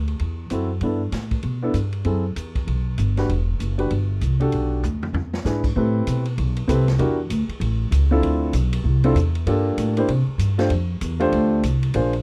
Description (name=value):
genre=jazz, big band swing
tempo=194 BPM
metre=4/4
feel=swing 62% on 8ths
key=E minor, A minor from 5.8 s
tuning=A4 = 440 Hz
part: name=upright bass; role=bass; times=0.0-12.2 s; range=E1 to C3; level=-23 LUFS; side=equal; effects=none
part: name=swinging big-band drum kit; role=drums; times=0.1-12.2 s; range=crash cymbal, hi-hat, kick drum, ride cymbal, snare drum, toms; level=-35 LUFS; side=equal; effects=none
part: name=warm baby grand piano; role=accompaniment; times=0.5-12.1 s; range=A3 to C5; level=-25 LUFS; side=equal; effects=none
room=little or no reverb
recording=dry, close 1970s-style studio recording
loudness=-22 LUFS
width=mono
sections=0.0-5.8 A section; 5.8-12.2 B section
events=drum fill 4.8-5.4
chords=0.0 D9; 0.8 G6; 2.0 F#m7b5; 2.7 B5; 3.3 Em9; 5.1 E7; 5.8 Am9; 7.0 Em7b5; 7.6 A; 8.2 Dm9; 9.5 Gm9; 10.1 Csus2; 10.7 F69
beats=0.20 0.51 | 0.81 1.12 1.43 1.74 | 2.05 2.36 2.67 2.98 | 3.28 3.59 3.90 4.21 | 4.52 4.83 5.14 5.45 | 5.76 6.07 6.38 6.68 | 6.99 7.30 7.61 7.92 | 8.23 8.54 8.85 9.16 | 9.47 9.78 10.08 10.39 | 10.70 11.01 11.32 11.63 | 11.94